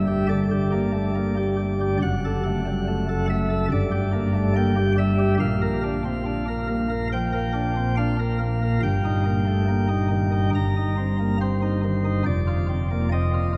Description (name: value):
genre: classical, chorale-style piece for pipe organ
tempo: 70 BPM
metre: 4/4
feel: straight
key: Bb major from 5.4 s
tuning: A4 = 435 Hz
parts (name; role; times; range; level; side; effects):
- chamber organ, sparkling flutes; solo; 0.0-13.6 s; F1 to Bb5; -23 LUFS; equal; none
room: wet cathedral reverb, RT60 5.3 s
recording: heard from further back in the room, vinyl crackle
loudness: -23 LUFS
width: mono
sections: 0.0-13.6 A section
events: none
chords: 0.0 Gm; 2.0 Gbm7; 3.7 Gm; 5.4 Bb; 8.8 Eb/G; 10.5 Cm7/G; 12.3 F5